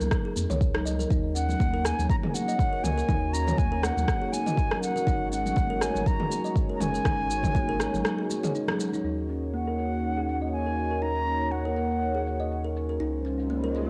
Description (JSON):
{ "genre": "afro house", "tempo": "121 BPM", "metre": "4/4", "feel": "swing 56% on 16ths", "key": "Eb minor", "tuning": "A4 = 440 Hz", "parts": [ { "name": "round analog bass", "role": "bass", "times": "0.0-13.9 s", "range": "Gb1 to F2", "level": "-34 LUFS", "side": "equal", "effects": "sidechain pumping" }, { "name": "deep house drum kit", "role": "drums", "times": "0.0-13.9 s", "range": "rim click, shaker, toms", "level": "-34 LUFS", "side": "equal", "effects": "low-pass filter on perc, cassette tape, low-pass filter on snare, low-pass filter on toms, low-pass filter on room" }, { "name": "congas", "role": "percussion", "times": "0.0-9.0 s", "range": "none", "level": "-38 LUFS", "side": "equal", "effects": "none" }, { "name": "electronic kick drum", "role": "drums", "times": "0.1-7.7 s", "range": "none", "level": "-29 LUFS", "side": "equal", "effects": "cassette tape" }, { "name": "kalimba", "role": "arpeggios", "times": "0.3-13.9 s", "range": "Bb3 to Eb5", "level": "-35 LUFS", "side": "equal", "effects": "sidechain pumping, low-pass filter, cassette tape" }, { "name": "warm analog pad", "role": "sustained chords", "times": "1.1-13.9 s", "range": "Ab3 to Db5", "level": "-35 LUFS", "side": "equal", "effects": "chorus, vintage 12-bit sampler grit, sidechain pumping, cassette tape" }, { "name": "mellow hollow silver concert flute", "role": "melody", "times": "1.4-12.8 s", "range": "Gb5 to Bb5", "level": "-33 LUFS", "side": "equal", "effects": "cassette tape, tape echo" }, { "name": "riser", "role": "sound effects", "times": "13.4-13.9 s", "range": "none", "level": "-41 LUFS", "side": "equal", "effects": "none" } ], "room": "moderate spring reverb, RT60 1.4 s", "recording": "home recording on cassette", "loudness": "-27 LUFS", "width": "mono", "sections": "0.0-9.0 A section; 9.0-13.9 B section", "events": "break 8.0-9.0; filter sweep on kalimba 9.0-13.9; riser 13.4-13.9", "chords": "0.0 N.C.; 1.1 Ebm7; 5.1 Ab7sus4; 9.0 Ebm7; 13.0 Dbmaj7" }